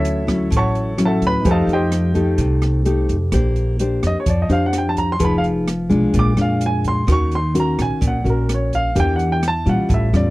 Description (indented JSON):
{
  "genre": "bossa nova",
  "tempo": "128 BPM",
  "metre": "4/4",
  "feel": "straight",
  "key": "unclear",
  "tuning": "A4 = 440 Hz",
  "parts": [
    { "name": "warm baby grand piano", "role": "melody", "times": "0.0-10.3 s", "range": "E4 to D6", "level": "-22 LUFS", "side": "right 1 dB", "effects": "none" },
    { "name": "clear grand piano", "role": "accompaniment", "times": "0.0-3.3 s", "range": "Eb4 to C#5", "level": "-32 LUFS", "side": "right 3 dB", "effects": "none" },
    { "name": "nylon-string guitar", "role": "accompaniment", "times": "0.0-10.3 s", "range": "A2 to C5", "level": "-19 LUFS", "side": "left 1 dB", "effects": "none" },
    { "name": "upright bass", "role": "bass", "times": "0.0-10.3 s", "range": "F1 to Bb2", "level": "-20 LUFS", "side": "equal", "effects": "none" },
    { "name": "open jazz drum kit", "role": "drums", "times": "0.0-10.2 s", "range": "hi-hat, kick drum, rim click", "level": "-24 LUFS", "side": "equal", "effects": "none" }
  ],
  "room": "little or no reverb",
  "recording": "dry, close 1970s-style studio recording",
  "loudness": "-16 LUFS",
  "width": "side -19 dB against mid",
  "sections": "0.0-3.3 A section; 3.3-10.3 A section",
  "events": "grand piano solo 0.0-10.3",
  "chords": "0.0 Dmaj9; 1.4 F9; 3.3 Bb69; 5.2 Fm7b5; 6.1 Bb7; 7.1 Ebm7; 9.0 Em7b5"
}